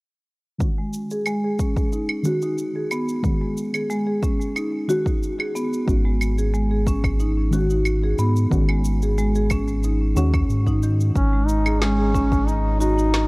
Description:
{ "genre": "organic downtempo", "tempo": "91 BPM", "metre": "4/4", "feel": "straight", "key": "unclear", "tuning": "A4 = 440 Hz", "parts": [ { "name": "deep mellow chord stab", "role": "accompaniment", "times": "0.6-11.2 s", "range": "D#3 to F#4", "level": "-28 LUFS", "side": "left 1 dB", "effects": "chorus, sidechain pumping, tape echo" }, { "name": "electronic kick drum", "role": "drums", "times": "0.6-12.4 s", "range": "none", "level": "-23 LUFS", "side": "equal", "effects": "overdrive" }, { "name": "electronic shaker, claves and snare drum", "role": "drums", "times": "0.6-13.3 s", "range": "none", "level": "-30 LUFS", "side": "right 1 dB", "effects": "none" }, { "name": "marimba with soft mallets", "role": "arpeggios", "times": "0.8-13.1 s", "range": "D#3 to G#4", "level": "-24 LUFS", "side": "equal", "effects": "low-pass filter, tape echo" }, { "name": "warm sub bass", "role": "bass", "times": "5.9-13.3 s", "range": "G#1 to G#2", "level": "-21 LUFS", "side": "equal", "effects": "none" }, { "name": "dark duduk", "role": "melody", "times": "11.1-13.3 s", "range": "C#4 to D#4", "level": "-23 LUFS", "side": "equal", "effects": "vintage 12-bit sampler grit, tape echo" } ], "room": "light reverb", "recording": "worn, warbling old tape, cassette tape, warbly pitch drift", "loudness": "-19 LUFS", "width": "side -26 dB against mid", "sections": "0.6-11.2 A section; 11.2-13.3 B section", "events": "filter sweep on marimba 0.6-11.2; filter sweep on synth stab 0.6-11.2", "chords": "0.6 G#7sus4" }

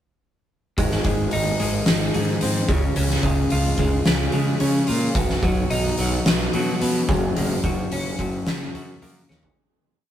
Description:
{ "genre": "quiet-loud alternative rock", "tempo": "109 BPM", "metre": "4/4", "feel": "straight", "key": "unclear", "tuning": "A4 = 440 Hz", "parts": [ { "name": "twelve-string electric guitar", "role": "arpeggios", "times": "0.8-9.6 s", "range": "Gb2 to F4", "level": "-24 LUFS", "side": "left 1 dB", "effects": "none" }, { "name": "fuzz picked electric bass", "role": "bass", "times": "0.8-9.5 s", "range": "Gb1 to Db3", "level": "-24 LUFS", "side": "right 1 dB", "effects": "overdrive" }, { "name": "oversized low-tuned drum kit", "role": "drums", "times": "0.8-9.6 s", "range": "hi-hat, kick drum, snare drum, toms", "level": "-23 LUFS", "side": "equal", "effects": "none" } ], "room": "moderate studio reverb, RT60 0.6 s", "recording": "rough rehearsal-room recording", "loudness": "-19 LUFS", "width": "side -11 dB against mid", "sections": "0.8-9.6 verse", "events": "fade-out 7.4-9.6; drum fill 9.3", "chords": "0.8 Ab; 2.7 Db; 5.2 Cb; 7.1 Gb" }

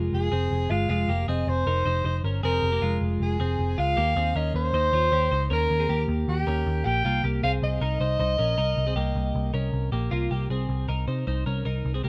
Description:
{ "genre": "jangly indie pop", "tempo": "156 BPM", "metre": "4/4", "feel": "straight", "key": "F minor", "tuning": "A4 = 438 Hz", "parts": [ { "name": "twelve-string electric guitar", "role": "arpeggios", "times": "0.0-12.1 s", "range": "Ab3 to Db5", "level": "-33 LUFS", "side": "equal", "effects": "none" }, { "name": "vintage muted picked electric bass", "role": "bass", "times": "0.0-12.1 s", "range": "F1 to C3", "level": "-28 LUFS", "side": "equal", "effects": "none" }, { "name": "warm soprano saxophone", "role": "melody", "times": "0.1-9.7 s", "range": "G4 to G5", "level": "-29 LUFS", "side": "equal", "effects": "none" } ], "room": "studio reverb", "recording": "rough home demo mix", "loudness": "-25 LUFS", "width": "mono", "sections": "0.0-10.1 A section; 10.1-12.1 B section", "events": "none", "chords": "0.0 Fm7; 4.0 Eb7; 10.1 Cm7" }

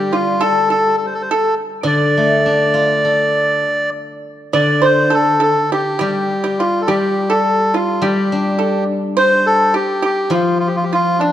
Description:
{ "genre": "chinese traditional, Chinese chamber ensemble", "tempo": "104 BPM", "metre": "4/4", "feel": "rubato", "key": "D yu mode", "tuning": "A4 = 440 Hz", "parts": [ { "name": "melodica", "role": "melody", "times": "0.0-11.3 s", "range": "D4 to D5", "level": "-16 LUFS", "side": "equal", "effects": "none" }, { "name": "pipa", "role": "second line", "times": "0.0-11.3 s", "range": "D4 to D5", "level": "-19 LUFS", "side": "right 2 dB", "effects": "none" }, { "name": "steel-string zither", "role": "accompaniment", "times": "0.0-11.3 s", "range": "D3 to A4", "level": "-19 LUFS", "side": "left 2 dB", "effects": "none" } ], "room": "moderate concert hall reverb, RT60 2.3 s", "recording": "dark, warm production", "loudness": "-13 LUFS", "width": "side -11 dB against mid", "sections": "0.0-4.5 A section; 4.5-11.3 B section", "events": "none", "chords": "none" }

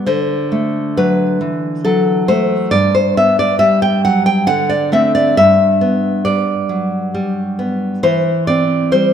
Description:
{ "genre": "romantic piece for solo classical guitar", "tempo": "68 BPM", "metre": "3/4", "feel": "rubato", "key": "G major", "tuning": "A4 = 440 Hz", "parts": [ { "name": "nylon-string guitar", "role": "solo", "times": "0.0-9.1 s", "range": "G2 to G5", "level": "-12 LUFS", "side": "equal", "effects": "none" } ], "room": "moderate scoring stage reverb, RT60 1.4 s", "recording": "none", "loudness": "-12 LUFS", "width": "side -8 dB against mid", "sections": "0.0-9.1 A section", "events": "none", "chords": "0.1 D7; 2.7 G; 4.5 D5; 5.4 G; 8.0 C/E" }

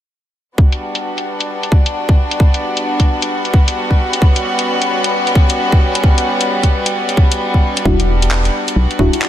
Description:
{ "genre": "UK garage, two-step garage", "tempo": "132 BPM", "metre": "4/4", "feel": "swing 63% on 16ths", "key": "unclear", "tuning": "A4 = 442 Hz", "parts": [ { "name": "clear studio violin section", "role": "sustained chords", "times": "0.6-9.3 s", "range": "G3 to F#4", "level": "-17 LUFS", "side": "equal", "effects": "sidechain pumping" }, { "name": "electronic kick drum", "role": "drums", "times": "0.6-9.1 s", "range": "none", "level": "-11 LUFS", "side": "equal", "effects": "none" }, { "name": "garage drum kit", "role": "drums", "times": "0.7-9.3 s", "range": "handclaps, hi-hat", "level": "-20 LUFS", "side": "left 2 dB", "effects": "low-pass filter on hats, low-pass filter on snare" }, { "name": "deep mellow chord stab", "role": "stabs", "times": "7.9-9.1 s", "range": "G3 to F#4", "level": "-18 LUFS", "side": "left 1 dB", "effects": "chorus, diffuse ambient delay" }, { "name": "organ-like FM bass", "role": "bass", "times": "7.9-9.1 s", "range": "D1 to B1", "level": "-15 LUFS", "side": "equal", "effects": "tube saturation" } ], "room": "moderate lush hall reverb, RT60 1.7 s, digital ambience", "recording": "dreamy mix soaked in reverb, lossy compression artefacts", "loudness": "-12 LUFS", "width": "side -12 dB against mid", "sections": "0.6-9.3 A section", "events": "none", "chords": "0.6 Gmaj7; 4.2 Gmaj7#11; 7.9 Em9" }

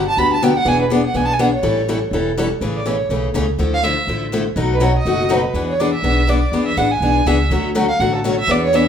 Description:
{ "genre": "acoustic string swing (jazz manouche)", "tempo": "245 BPM", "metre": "4/4", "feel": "swing 55% on 8ths", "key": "A major", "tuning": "A4 = 440 Hz", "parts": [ { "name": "warm violin", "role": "melody", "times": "0.0-8.9 s", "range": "A4 to B5", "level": "-19 LUFS", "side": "right 3 dB", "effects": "none" }, { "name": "picked steel-string acoustic guitar", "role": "accompaniment", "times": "0.0-8.8 s", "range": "B2 to A4", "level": "-18 LUFS", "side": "left 3 dB", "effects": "none" }, { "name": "upright bass", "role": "bass", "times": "0.0-8.9 s", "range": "E1 to E2", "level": "-22 LUFS", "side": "right 1 dB", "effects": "none" } ], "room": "moderate large studio reverb, RT60 0.9 s", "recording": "band playing live in one room", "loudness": "-15 LUFS", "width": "side -8 dB against mid", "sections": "0.0-2.6 A section; 2.6-8.9 A section", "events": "violin solo 0.0-2.6, 2.6-8.9", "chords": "0.0 Gmaj7; 0.7 E7; 1.6 A7; 2.6 Amaj7; 3.6 Dmadd9; 4.6 B7; 5.5 E7; 7.5 Dmaj7" }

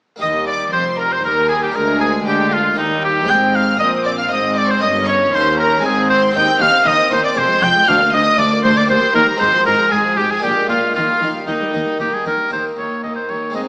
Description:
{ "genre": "classical, baroque-style concerto movement with solo episodes", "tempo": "117 BPM", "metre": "3/4", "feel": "straight", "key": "Eb major", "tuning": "A4 = 441 Hz", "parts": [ { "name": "bright oboe", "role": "melody", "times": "0.2-13.6 s", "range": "Eb4 to G5", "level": "-15 LUFS", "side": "equal", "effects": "none" }, { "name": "rich chamber violin section", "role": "melody", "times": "0.2-13.7 s", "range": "Eb5 to G6", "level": "-23 LUFS", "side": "equal", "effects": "none" }, { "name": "warm chamber violin section", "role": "second line", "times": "0.2-13.7 s", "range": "Eb4 to G5", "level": "-22 LUFS", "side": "equal", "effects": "none" }, { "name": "harpsichord", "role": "accompaniment", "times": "0.2-13.7 s", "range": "D2 to C5", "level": "-24 LUFS", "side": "equal", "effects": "none" }, { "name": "rich chamber viola section", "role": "accompaniment", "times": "0.2-13.7 s", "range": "F3 to Eb4", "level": "-24 LUFS", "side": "equal", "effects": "none" }, { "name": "warm chamber cello section", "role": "bass", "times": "0.2-13.6 s", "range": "D2 to Eb3", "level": "-24 LUFS", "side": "equal", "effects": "none" }, { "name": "warm chamber double bass section", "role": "bass", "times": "0.2-12.3 s", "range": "F1 to Eb2", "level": "-28 LUFS", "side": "equal", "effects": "none" } ], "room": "wet recital hall reverb, RT60 1.5 s", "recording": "small speaker sound", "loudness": "-13 LUFS", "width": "side -37 dB against mid", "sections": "0.2-12.5 A section; 12.5-13.7 B section", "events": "none", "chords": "0.2 Eb; 1.8 Bb7/D; 2.8 Eb; 3.3 Ab; 4.8 Eb7/G; 5.8 Ab; 6.3 Cm/Eb; 7.4 Fm; 7.9 Bb/D; 8.9 Eb; 9.4 Fm/Ab; 10.4 Bb7; 11.0 Eb" }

